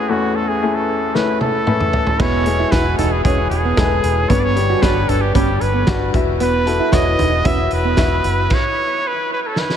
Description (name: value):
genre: piano-driven pop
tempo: 114 BPM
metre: 4/4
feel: straight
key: unclear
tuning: A4 = 438 Hz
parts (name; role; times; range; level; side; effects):
- bright trumpet; melody; 0.0-9.8 s; F#4 to E5; -20 LUFS; right 1 dB; none
- bright upright piano; accompaniment; 0.0-8.5 s; A1 to E5; -20 LUFS; left 5 dB; none
- loose indie drum kit; drums; 1.1-9.8 s; crash cymbal, hi-hat, kick drum, snare drum, toms; -20 LUFS; right 1 dB; none
- fingerpicked plugged-in steel-string acoustic guitar; riff; 2.2-8.0 s; B3 to F#4; -24 LUFS; right 7 dB; wide subtle chorus
- vintage muted fingered electric bass; bass; 2.2-8.5 s; E1 to G1; -20 LUFS; right 1 dB; none
room: moderate huge ambient reverb, RT60 8.5 s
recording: dreamy mix soaked in reverb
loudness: -14 LUFS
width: side -9 dB against mid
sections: 0.0-2.2 A section; 2.2-9.8 B section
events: drum fill 1.1-2.2, 9.6; stop 8.5-9.8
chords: 0.0 Aadd9; 2.2 E; 4.3 G; 6.1 Esus2